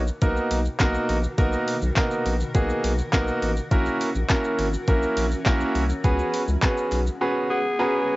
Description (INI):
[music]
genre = dance-pop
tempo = 103 BPM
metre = 4/4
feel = straight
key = unclear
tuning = A4 = 440 Hz
[part]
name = granular cloud pad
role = sustained chords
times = 0.5-8.2 s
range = B2 to A#4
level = -36 LUFS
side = left 1 dB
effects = built-in reverb, sidechain pumping, cassette tape
[part]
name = round analog bass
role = bass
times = 0.0-7.1 s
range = Ab1 to Db2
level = -26 LUFS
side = equal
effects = sidechain pumping
[part]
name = smooth R&B drum kit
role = drums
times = 0.1-7.2 s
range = handclaps, hi-hat, kick drum, shaker, snare drum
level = -24 LUFS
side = equal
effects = cassette tape
[part]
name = clear grand piano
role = accompaniment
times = 0.2-8.2 s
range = A#3 to Bb5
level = -24 LUFS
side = right 1 dB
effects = sidechain pumping, cassette tape
[part]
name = group handclap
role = percussion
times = 0.8-7.1 s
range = none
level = barely audible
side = none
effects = none
[part]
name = breathy alto saxophone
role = melody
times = 7.5-8.2 s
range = Ab4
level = -25 LUFS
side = left 2 dB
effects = none
[sound]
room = light reverb, small room ambience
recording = home recording on cassette, nothing above 7.7 kHz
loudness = -20 LUFS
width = side -20 dB against mid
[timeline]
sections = 0.0-8.2 A section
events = silent gap 7.2-8.2; grand piano fill 7.2-8.2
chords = 0.0 Bmaj7; 3.7 Gb7; 6.0 Db7sus4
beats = 0.22 0.80 | 1.38 1.97 2.55 3.13 | 3.71 4.29 4.88 5.46 | 6.04 6.62 7.21 7.79